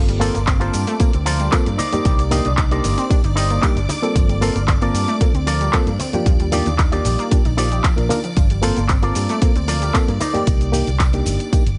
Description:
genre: nu-disco, nu disco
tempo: 114 BPM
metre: 4/4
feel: straight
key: G minor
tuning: A4 = 440 Hz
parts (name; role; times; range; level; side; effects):
- reed electric piano; accompaniment; 0.0-11.6 s; Bb3 to A5; -26 LUFS; equal; overdrive
- string machine, full ensemble; sustained chords; 0.0-11.8 s; D5 to D6; -34 LUFS; equal; ensemble chorus, sidechain pumping
- unison pluck; arpeggios; 0.0-10.4 s; F3 to Eb4; -29 LUFS; equal; sidechain pumping, tape echo
- fingered electric bass with an envelope filter; bass; 0.0-11.8 s; G1 to G2; -23 LUFS; equal; sidechain pumping
- house drum kit; drums; 0.1-11.8 s; handclaps, hi-hat, shaker; -28 LUFS; equal; small room ambience
- tambourine, congas and bongos; percussion; 0.1-11.8 s; none; -34 LUFS; equal; none
- electric guitar with an envelope filter; riff; 0.2-10.4 s; Eb4 to Eb5; -28 LUFS; equal; subtle chorus
- electronic kick drum; drums; 0.5-11.6 s; none; -19 LUFS; equal; small room ambience
room: little or no reverb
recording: nothing above 10.6 kHz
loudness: -18 LUFS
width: mono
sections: 0.0-11.8 A section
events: none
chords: 0.0 Gm11; 1.8 Cm9; 4.2 Gm11; 6.3 Ebmaj9; 8.4 Gm11; 10.2 Cm9

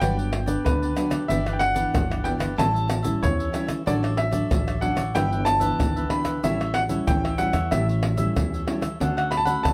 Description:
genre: samba and choro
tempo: 93 BPM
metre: 4/4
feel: straight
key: unclear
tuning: A4 = 440 Hz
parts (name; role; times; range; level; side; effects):
- clear concert grand piano; melody; 0.0-9.7 s; B4 to B5; -29 LUFS; equal; plate reverb
- cavaquinho; accompaniment; 0.0-9.7 s; D4 to F#5; -36 LUFS; equal; none
- nylon-string guitar; accompaniment; 0.0-9.7 s; G2 to F#4; -31 LUFS; equal; none
- upright bass; bass; 0.0-9.7 s; G1 to E2; -30 LUFS; equal; none
- tube shaker, surdo, pandeiro and tamborim; percussion; 0.0-9.7 s; none; -29 LUFS; equal; none
room: moderate studio reverb, RT60 0.5 s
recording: none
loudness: -24 LUFS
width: mono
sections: 0.0-9.7 A section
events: none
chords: 0.0 Gmaj7; 1.3 Em7/G; 2.6 A7; 3.9 Dmaj7/A; 5.2 G6; 6.4 A7; 9.0 Dmaj7

